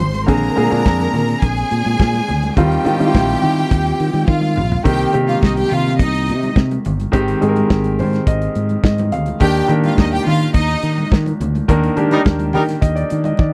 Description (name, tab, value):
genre	disco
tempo	105 BPM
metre	4/4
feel	straight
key	unclear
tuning	A4 = 439 Hz
part	clear studio string section	second line	0.0-11.1 s	Eb4 to C6	-23 LUFS	equal	none
part	warm baby grand piano	accompaniment	0.0-13.5 s	D3 to G5	-21 LUFS	equal	none
part	fingered electric bass	bass	0.0-13.5 s	G1 to Eb3	-21 LUFS	equal	none
part	congas	percussion	0.0-13.5 s	none	-28 LUFS	equal	none
part	warm soul drum kit	drums	0.1-13.5 s	hi-hat, kick drum, snare drum, toms	-17 LUFS	equal	none
part	mellow horn section	stabs	12.1-12.6 s	G3 to Bb4	-19 LUFS	equal	none
room	little or no reverb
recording	dry, close 1970s-style studio recording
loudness	-16 LUFS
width	mono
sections	0.0-4.8 A section; 4.8-13.5 B section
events	drum fill 4.3-4.8; grand piano fill 7.7-9.4, 12.3-13.5; band accent 11.7-13.5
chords	0.3 Bb9; 2.6 Eb69; 4.8 Cm7; 7.1 Abmaj7; 9.4 Ebmaj7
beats	| 0.28 0.85 1.43 2.00 | 2.57 3.14 3.71 4.28 | 4.85 5.42 5.99 6.56 | 7.13 7.70 8.27 8.84 | 9.41 9.98 10.55 11.12 | 11.69 12.26 12.82 13.39